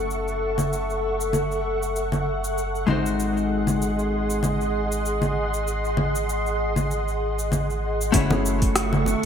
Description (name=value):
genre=sunset chillout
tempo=97 BPM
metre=4/4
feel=swing 56% on 16ths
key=unclear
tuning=A4 = 440 Hz
part: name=vintage hollow-body jazz guitar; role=accompaniment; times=0.0-9.3 s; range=G#3 to C#5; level=-26 LUFS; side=moving between left 5 dB and right 7 dB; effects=auto-pan, digital delay
part: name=soft string machine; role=sustained chords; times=0.0-9.3 s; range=G#4 to C#6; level=-26 LUFS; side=equal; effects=ensemble chorus
part: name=warm sub bass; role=bass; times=0.0-9.2 s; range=F#1 to G#1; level=-29 LUFS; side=equal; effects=none
part: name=smooth R&B drum kit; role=drums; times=0.1-9.3 s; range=cabasa, congas, hi-hat, rim click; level=-26 LUFS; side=equal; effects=gated reverb
part: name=electronic kick drum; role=drums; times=8.1-8.7 s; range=none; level=-23 LUFS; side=equal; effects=none
part: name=congas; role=percussion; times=8.3-9.2 s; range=none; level=-27 LUFS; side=left 1 dB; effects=none
room=moderate plate reverb, RT60 1.8 s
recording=bright 1980s-style digital production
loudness=-21 LUFS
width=side -8 dB against mid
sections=0.0-8.1 A section; 8.1-9.3 B section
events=none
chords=0.0 F#m7; 2.9 G#7; 8.1 F#m7